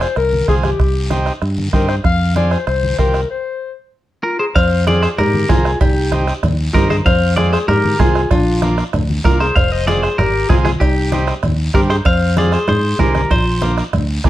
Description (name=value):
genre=latin, cumbia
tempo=192 BPM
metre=4/4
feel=straight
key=unclear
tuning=A4 = 440 Hz
part: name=breathy clarinet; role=second line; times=0.0-13.7 s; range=D4 to F5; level=-20 LUFS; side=left 4 dB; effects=none
part: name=combo organ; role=accompaniment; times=0.0-14.3 s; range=G3 to Bb4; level=-23 LUFS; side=right 3 dB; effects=none
part: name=fingered electric bass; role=bass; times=0.0-14.3 s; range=F1 to Ab2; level=-17 LUFS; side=equal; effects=none
part: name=bombo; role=percussion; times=0.0-14.3 s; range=none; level=-18 LUFS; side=right 1 dB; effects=none
part: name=guiro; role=percussion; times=0.0-14.3 s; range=none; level=-32 LUFS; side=left 2 dB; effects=none
part: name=congas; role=percussion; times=0.2-14.3 s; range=none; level=-22 LUFS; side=left 1 dB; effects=none
part: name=clean electric guitar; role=melody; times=4.2-13.7 s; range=F4 to F5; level=-19 LUFS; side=equal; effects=spring reverb, slapback echo
part: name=cowbell and timbales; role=percussion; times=4.6-14.3 s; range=none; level=-26 LUFS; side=right 6 dB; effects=none
room=light reverb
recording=dark, warm production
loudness=-13 LUFS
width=side -14 dB against mid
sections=0.0-4.6 A section; 4.6-14.3 B section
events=clarinet solo 0.0-4.6; stop 3.3-4.6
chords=0.0 Fm; 0.8 Cm; 2.0 Fmadd9; 3.3 N.C.; 4.6 Fmadd9; 5.8 Cm; 7.1 Fmadd9; 8.3 Bbadd9; 9.6 Fmadd9; 10.8 Cm; 12.1 Fmadd9; 13.3 Bbadd9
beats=0.17 0.48 | 0.80 1.11 1.42 1.74 | 2.05 2.36 2.67 2.99 | 3.30 3.62 3.93 4.24 | 4.55 4.87 5.18 5.49 | 5.81 6.12 6.43 6.75 | 7.06 7.37 7.68 8.00 | 8.31 8.62 8.94 9.25 | 9.56 9.87 10.19 10.50 | 10.81 11.12 11.44 11.75 | 12.06 12.37 12.68 13.00 | 13.31 13.62 13.93 14.25